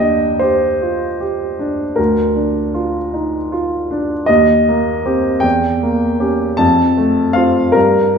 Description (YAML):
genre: classical, romantic character piece for solo piano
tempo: 52 BPM (dotted quarters)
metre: 6/8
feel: rubato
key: Bb major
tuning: A4 = 440 Hz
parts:
  - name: warm upright piano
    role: solo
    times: 0.0-8.2 s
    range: D2 to A5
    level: -13 LUFS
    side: equal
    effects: none
room: wet recital hall reverb, RT60 1.5 s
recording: minimal, uncompressed stereo recording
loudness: -13 LUFS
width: side -6 dB against mid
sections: 0.0-8.2 A section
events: none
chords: 0.0 Ebmaj7; 2.0 Bb/D; 4.3 Eb6; 5.4 Edim7; 6.6 F